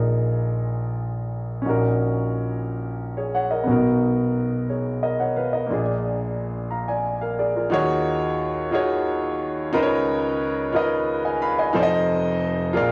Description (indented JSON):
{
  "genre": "gospel",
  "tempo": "59 BPM (dotted quarters)",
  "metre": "6/8",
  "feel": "straight",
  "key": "Eb minor",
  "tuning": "A4 = 441 Hz",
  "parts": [
    { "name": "clear concert grand piano", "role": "solo", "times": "0.0-12.9 s", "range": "F1 to Cb6", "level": "-23 LUFS", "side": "equal", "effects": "cassette tape" }
  ],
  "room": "light reverb",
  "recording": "home recording on cassette, studio ambience",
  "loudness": "-23 LUFS",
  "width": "mono",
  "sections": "0.0-7.7 A section; 7.7-12.9 B section",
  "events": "none",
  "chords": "0.0 Bb7sus4; 1.6 Ebm7/Bb; 3.7 Bmaj7; 5.7 Bb7; 7.7 Ebm11; 9.7 Db13; 11.7 F7",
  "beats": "0.64 | 1.65 2.66 | 3.67 4.68 | 5.69 6.70 | 7.71 8.72 | 9.73 10.73 | 11.74 12.74"
}